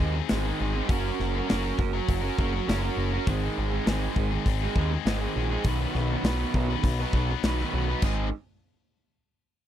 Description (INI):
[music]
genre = classic rock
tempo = 101 BPM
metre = 4/4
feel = straight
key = unclear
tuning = A4 = 438 Hz
[part]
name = distorted electric guitar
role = riff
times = 0.0-8.3 s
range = Ab2 to B4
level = -32 LUFS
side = left 16 dB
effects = overdrive
[part]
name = raw garage guitar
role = riff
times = 0.0-8.3 s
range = Ab2 to B4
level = -31 LUFS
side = right 12 dB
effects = overdrive
[part]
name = growling picked electric bass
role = bass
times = 0.0-8.3 s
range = Gb1 to Eb2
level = -28 LUFS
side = equal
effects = overdrive
[part]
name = big rock drum kit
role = drums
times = 0.0-8.2 s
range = crash cymbal, hi-hat, kick drum, snare drum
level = -28 LUFS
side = equal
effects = none
[sound]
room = little or no reverb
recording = dry, close 1970s-style studio recording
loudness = -24 LUFS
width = side -11 dB against mid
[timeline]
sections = 0.0-8.0 A section; 8.0-9.7 B section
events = none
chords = 0.0 Ab; 0.9 Gb; 3.3 Ab; 5.7 B; 8.0 Ab